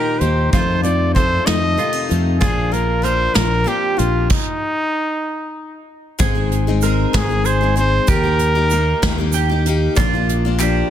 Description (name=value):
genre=indie folk with a building arrangement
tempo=64 BPM (dotted quarters)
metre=6/8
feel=straight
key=Eb major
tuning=A4 = 439 Hz
part: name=clear trumpet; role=melody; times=0.0-9.3 s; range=Eb4 to Eb5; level=-20 LUFS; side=equal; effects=none
part: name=fingerpicked steel-string acoustic guitar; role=accompaniment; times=0.0-4.3 s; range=Eb2 to A4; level=-26 LUFS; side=left 2 dB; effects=none
part: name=picked steel-string acoustic guitar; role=accompaniment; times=0.0-10.9 s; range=F2 to Ab4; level=-23 LUFS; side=left 7 dB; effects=none
part: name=mandolin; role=arpeggios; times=0.0-10.9 s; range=F4 to Bb4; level=-25 LUFS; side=right 8 dB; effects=none
part: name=fingered electric bass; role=bass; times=0.2-10.8 s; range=Ab1 to F2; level=-19 LUFS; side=equal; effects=none
part: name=soft brush drum kit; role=drums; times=0.2-10.7 s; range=crash cymbal, hi-hat, kick drum, snare drum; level=-20 LUFS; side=equal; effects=soft clipping on snare
part: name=egg shaker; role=percussion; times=6.2-10.7 s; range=none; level=-30 LUFS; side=right 21 dB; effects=none
part: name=warm upright piano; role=accompaniment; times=10.0-10.9 s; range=Bb1 to D5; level=-27 LUFS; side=right 3 dB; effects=none
part: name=group handclap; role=percussion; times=10.0-10.7 s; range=none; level=-30 LUFS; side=left 7 dB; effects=none
room=light reverb, small room reverb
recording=dense, heavily limited modern master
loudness=-15 LUFS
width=side -10 dB against mid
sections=0.0-6.2 A section; 6.2-10.9 B section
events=stop 4.3-6.2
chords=0.0 Eb; 0.5 F7; 2.4 Bb; 4.3 N.C.; 6.2 Ab; 8.1 Eb; 10.0 Bb